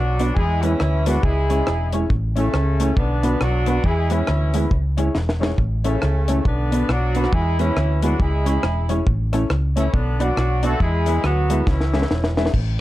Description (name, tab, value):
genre	ska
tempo	138 BPM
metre	4/4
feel	swing 61% on 8ths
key	A major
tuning	A4 = 438 Hz
part	warm horn section	melody	0.0-12.3 s	C#3 to A4	-24 LUFS	equal	slapback echo
part	hollow-body short-scale fingered electric bass	bass	0.0-12.8 s	E1 to E2	-20 LUFS	equal	none
part	mellow electric guitar	accompaniment	0.2-12.5 s	G#3 to F#4	-26 LUFS	right 3 dB	none
part	warm upright piano	stabs	0.2-12.5 s	B3 to E5	-28 LUFS	left 5 dB	none
part	deep reggae drum kit	drums	0.2-12.7 s	crash cymbal, hi-hat, kick drum, rim click, snare drum	-23 LUFS	equal	none
room	light reverb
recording	none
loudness	-17 LUFS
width	side -15 dB against mid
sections	0.0-12.5 A section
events	drum fill 5.1-5.6, 11.7-12.5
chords	0.4 E; 1.2 C#m; 2.1 A; 3.0 Bm; 3.8 E; 4.7 C#m; 5.6 A; 6.5 Bm; 7.3 E; 8.2 C#m; 9.1 A; 9.9 Bm; 10.8 E; 11.7 C#m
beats	| 0.37 0.80 1.24 1.67 | 2.10 2.54 2.97 3.41 | 3.84 4.28 4.71 5.15 | 5.58 6.02 6.45 6.89 | 7.32 7.76 8.19 8.63 | 9.06 9.50 9.93 10.37 | 10.80 11.23 11.67 12.10 | 12.54